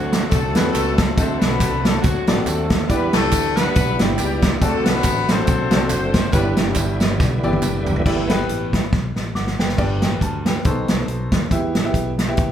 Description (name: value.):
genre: uptempo gospel.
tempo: 139 BPM.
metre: 4/4.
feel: swing 56% on 8ths.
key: G major.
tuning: A4 = 440 Hz.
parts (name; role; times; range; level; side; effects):
warm horn section; melody; 0.0-7.4 s; F#3 to C5; -23 LUFS; left 3 dB; none.
clear grand piano; accompaniment; 0.0-12.5 s; G2 to D6; -24 LUFS; equal; none.
bright tonewheel organ; sustained chords; 0.0-8.4 s; D3 to F#4; -27 LUFS; right 2 dB; fast rotary speaker, overdrive, chorus vibrato.
modern bright fingered electric bass; bass; 0.0-12.5 s; F#1 to E2; -25 LUFS; equal; none.
natural country drum kit; drums; 0.1-12.5 s; crash cymbal, hi-hat, kick drum, snare drum, toms; -19 LUFS; equal; none.
tambourine and handclaps; percussion; 0.1-8.0 s; none; -33 LUFS; right 4 dB; none.
room: moderate large studio reverb, RT60 0.8 s.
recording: band playing live in one room.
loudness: -16 LUFS.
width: side -10 dB against mid.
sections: 0.0-8.1 A section; 8.1-9.8 B section; 9.8-12.5 C section.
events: drum fill 7.2-8.1, 8.9-9.8; tonewheel organ solo 8.1-9.8.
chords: 0.0 D7; 2.9 Em7; 4.6 D7; 6.3 G6; 9.8 G; 10.6 B7b9; 11.5 Em.